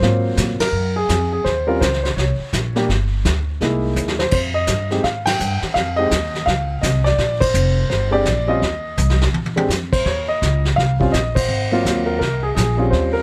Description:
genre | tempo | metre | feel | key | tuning
jazz piano trio | 167 BPM | 4/4 | swing 63% on 8ths | Eb mixolydian | A4 = 440 Hz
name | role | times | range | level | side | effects
warm grand piano | melody | 0.0-13.2 s | Gb3 to G5 | -22 LUFS | equal | none
upright bass | bass | 0.0-13.2 s | F1 to Bb2 | -23 LUFS | equal | none
vintage brush drum kit | drums | 0.0-13.2 s | brushed snare drum, crash cymbal, hi-hat, kick drum, ride cymbal, snare drum, toms | -25 LUFS | equal | none
room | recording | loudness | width
little or no reverb | close, detailed microphones | -19 LUFS | mono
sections
0.0-10.1 A section; 10.1-13.2 A section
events
band accent 0.6, 5.2, 7.4, 11.3; drum fill 4.0-4.3, 9.0-9.7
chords
0.0 Ab13; 1.5 Eb13; 2.9 G5; 3.6 C7alt; 4.3 Fm7; 7.2 Bb69; 8.6 Cm; 9.3 Bbsus2; 10.1 Eb7sus2; 11.5 Ab13

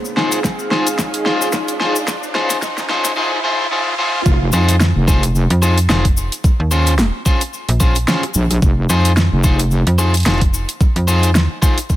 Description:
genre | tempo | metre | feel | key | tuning
glitch hop | 110 BPM | 4/4 | swing 56% on 16ths | F minor | A4 = 444 Hz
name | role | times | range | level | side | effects
dark analog pad | sustained chords | 0.0-3.2 s | Db4 to F5 | -23 LUFS | right 1 dB | chorus, sidechain pumping
cabasa | percussion | 0.0-12.0 s | none | -26 LUFS | left 5 dB | none
riser | sound effects | 0.0-4.3 s | none | -26 LUFS | right 2 dB | none
electric guitar at the edge of break-up | stabs | 0.2-11.8 s | Db4 to C5 | -20 LUFS | left 2 dB | sidechain pumping, digital delay
pop drum kit | drums | 0.2-11.9 s | hi-hat, rim click, snare drum | -20 LUFS | equal | overdrive
electronic kick drum | drums | 0.4-12.0 s | none | -14 LUFS | equal | overdrive
wobble bass | bass | 4.3-9.8 s | F1 to Bb1 | -15 LUFS | equal | chorus, tube saturation
slap-like FM bass | bass | 4.5-11.5 s | F1 to F2 | -14 LUFS | equal | none
room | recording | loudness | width
light reverb | high-pass filter | -13 LUFS | side -14 dB against mid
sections
0.0-4.3 A section; 4.3-12.0 B section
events
build-up 0.0-4.3; drum fill 0.0-3.2; riser 0.0-4.3; drop 4.3-12.0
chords
0.0 Fm7; 2.1 Dbmaj7; 4.3 Fm7; 6.4 Bbm9; 8.6 Fm7

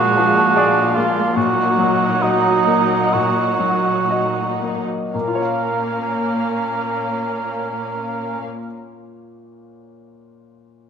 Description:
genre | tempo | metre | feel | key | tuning
classical, romantic movement for piano and orchestra | 55-76 BPM | 4/4 | rubato | Bb minor | A4 = 439 Hz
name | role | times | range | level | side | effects
clear baby grand piano | melody | 0.0-10.9 s | Bb2 to F5 | -22 LUFS | left 4 dB | none
muted studio violin section | melody | 0.0-8.4 s | F5 to Gb5 | -30 LUFS | left 3 dB | none
mellow cor anglais | second line | 0.0-8.4 s | Eb4 to Bb4 | -19 LUFS | right 4 dB | none
muted studio violin section | second line | 0.0-8.4 s | Db4 to Eb4 | -28 LUFS | equal | none
muted symphonic viola section | accompaniment | 0.0-8.4 s | Gb3 to Bb3 | -25 LUFS | right 4 dB | none
muted studio cello section | bass | 0.0-8.4 s | Bb2 | -29 LUFS | right 2 dB | none
room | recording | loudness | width
wet scoring stage reverb, RT60 1.6 s | none | -16 LUFS | side -7 dB against mid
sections
0.0-5.1 A section; 5.1-9.1 B section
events
slowing down 0.0-5.1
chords
0.0 Bb7; 1.4 Ebm/Bb; 5.1 Bbm

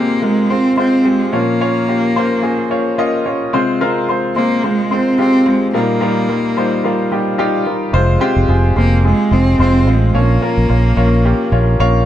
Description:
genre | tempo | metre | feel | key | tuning
pop | 109 BPM | 4/4 | swing 56% on 16ths | F minor | A4 = 440 Hz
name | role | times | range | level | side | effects
bright cello | melody | 0.0-11.8 s | Ab3 to C4 | -16 LUFS | right 1 dB | none
clear concert grand piano | accompaniment | 0.0-12.1 s | Bb2 to Eb5 | -16 LUFS | left 1 dB | none
fingered electric bass | bass | 7.9-12.0 s | F1 to Bb1 | -13 LUFS | right 1 dB | none
room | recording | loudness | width
wet large studio reverb, RT60 0.9 s, studio reverb | dark, warm production | -12 LUFS | side -11 dB against mid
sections
0.0-12.1 A section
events
none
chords
0.0 Fm; 1.3 Bbm; 3.5 Fm; 5.7 Ebadd9; 7.9 Fm; 10.1 Bbm

